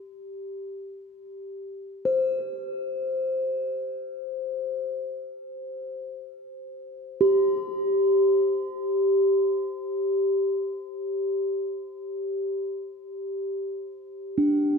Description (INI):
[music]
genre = world meditative, free-time meditation music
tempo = free time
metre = none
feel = none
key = unclear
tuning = A4 = 440 Hz
[part]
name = bronze singing bowl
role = solo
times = 0.0-14.8 s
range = D4 to C5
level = -25 LUFS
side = left 1 dB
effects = diffuse ambient delay
[sound]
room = moderate cathedral reverb, RT60 4.8 s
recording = dark, warm production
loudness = -24 LUFS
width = side -5 dB against mid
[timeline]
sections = 0.0-13.7 A section; 13.7-14.8 A section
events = none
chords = none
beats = free time